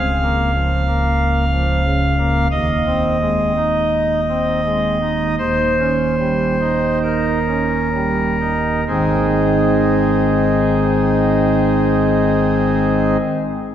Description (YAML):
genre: classical, chorale-style piece for pipe organ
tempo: 32-47 BPM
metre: 4/4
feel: rubato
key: Ab major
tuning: A4 = 440 Hz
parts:
  - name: pipe organ, cornet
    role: solo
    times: 0.0-13.2 s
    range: Db1 to F5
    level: -14 LUFS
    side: equal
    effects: none
room: wet church reverb, RT60 2.6 s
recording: heard from further back in the room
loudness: -14 LUFS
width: side -10 dB against mid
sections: 0.0-8.9 A section; 8.9-13.7 B section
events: slowing down 0.0-8.9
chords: 0.0 Bbm/Db; 2.5 Ab/Eb; 5.4 Eb7; 8.9 Ab